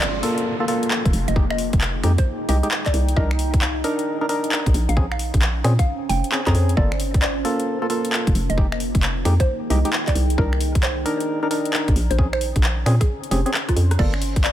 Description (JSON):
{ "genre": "UK garage, two-step garage", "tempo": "133 BPM", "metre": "4/4", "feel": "swing 65% on 16ths", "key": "unclear", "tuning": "A4 = 441 Hz", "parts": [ { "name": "mallet-like synth pluck", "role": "melody", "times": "0.0-14.5 s", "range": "F4 to Bb5", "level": "-29 LUFS", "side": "right 1 dB", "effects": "chorus, phaser, vintage 12-bit sampler grit, ping-pong delay" }, { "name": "hollow knocking FM bass", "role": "bass", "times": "0.0-14.5 s", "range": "F1 to Bb2", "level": "-20 LUFS", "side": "equal", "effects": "none" }, { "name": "garage drum kit", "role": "drums", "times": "0.0-14.5 s", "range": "crash cymbal, finger snaps, handclaps, hi-hat, rim click", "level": "-26 LUFS", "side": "left 1 dB", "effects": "studio reverb" }, { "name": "downlifter", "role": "sound effects", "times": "0.0-3.2 s", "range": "none", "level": "-33 LUFS", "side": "equal", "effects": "none" }, { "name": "deep dark ambient pad", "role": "texture", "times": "0.0-14.5 s", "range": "Bb3 to C6", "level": "-29 LUFS", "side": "right 1 dB", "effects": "chorus, built-in reverb, sidechain pumping" }, { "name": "percussive organ stab", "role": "stabs", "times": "0.2-14.1 s", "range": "Ab3 to Bb4", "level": "-25 LUFS", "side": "equal", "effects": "chorus, ping-pong delay" }, { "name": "electronic kick drum", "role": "drums", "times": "1.1-14.4 s", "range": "none", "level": "-19 LUFS", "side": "equal", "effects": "studio reverb" } ], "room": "little or no reverb", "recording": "none", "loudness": "-18 LUFS", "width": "side -12 dB against mid", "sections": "0.0-14.5 A section", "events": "drum fill 13.5-14.0", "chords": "0.0 Gm9; 1.1 Fm9; 3.2 Cm9; 4.7 Bbm9; 6.8 Gm9; 8.4 Fm9; 10.4 Cm9; 12.0 Bbm9; 14.0 Gm9", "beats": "0.01 0.46 0.91 | 1.36 1.81 2.26 2.71 | 3.16 3.61 4.07 4.52 | 4.97 5.42 5.87 6.32 | 6.77 7.22 7.67 8.12 | 8.58 9.03 9.48 9.93 | 10.38 10.83 11.28 11.73 | 12.19 12.64 13.09 13.54 | 13.99 14.44" }